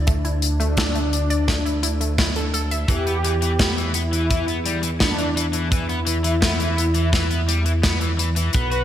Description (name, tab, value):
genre	synthwave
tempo	85 BPM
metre	4/4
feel	straight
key	unclear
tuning	A4 = 440 Hz
part	analog pluck	arpeggios	0.0-2.9 s	A3 to E5	-30 LUFS	right 1 dB	chorus, digital delay
part	chorused synth bass	bass	0.0-8.8 s	B1 to E2	-22 LUFS	equal	none
part	mellow synth brass	melody	0.1-8.8 s	D4 to B4	-26 LUFS	equal	chorus, digital delay
part	kick drum	drums	0.1-8.7 s	none	-23 LUFS	equal	none
part	tight metal drum kit	drums	0.1-8.8 s	hi-hat, snare drum	-25 LUFS	left 2 dB	gated reverb
part	cranked stack guitar	riff	2.9-8.8 s	E3 to F#4	-27 LUFS	left 3 dB	overdrive, wide subtle chorus, digital delay
room	light reverb, studio ambience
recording	bright 1980s-style digital production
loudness	-18 LUFS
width	side -11 dB against mid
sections	0.0-8.8 A section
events	none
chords	0.0 Dsus2; 2.9 E5